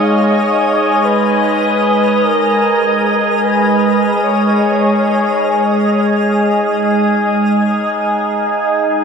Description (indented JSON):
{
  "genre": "ambient",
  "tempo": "free time",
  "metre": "none",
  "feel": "none",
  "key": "unclear",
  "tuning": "A4 = 440 Hz",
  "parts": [
    { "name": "breathy flute-like synth lead", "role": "melody", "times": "0.0-9.0 s", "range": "A#4 to G#5", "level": "-18 LUFS", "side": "equal", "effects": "lush chorus, shimmer reverb, analog delay" },
    { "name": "evolving wavetable pad", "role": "sustained chords", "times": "0.0-9.0 s", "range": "G#3 to G#5", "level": "-13 LUFS", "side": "equal", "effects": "phaser, built-in reverb, shimmer reverb" },
    { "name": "analog drone", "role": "drone", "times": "0.0-7.5 s", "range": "G#3 to D#4", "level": "-25 LUFS", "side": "right 1 dB", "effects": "chorus" },
    { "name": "twinkling granular texture", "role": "texture", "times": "0.0-7.4 s", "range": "D#5 to E#6", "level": "-25 LUFS", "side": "equal", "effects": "built-in reverb, shimmer reverb" }
  ],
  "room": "wet huge ambient reverb, RT60 8.4 s",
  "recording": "dreamy mix soaked in reverb, cassette tape",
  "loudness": "-11 LUFS",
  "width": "side -6 dB against mid",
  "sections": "0.0-7.4 A section; 7.4-9.0 B section",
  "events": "none",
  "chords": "0.0 C#add9/G#"
}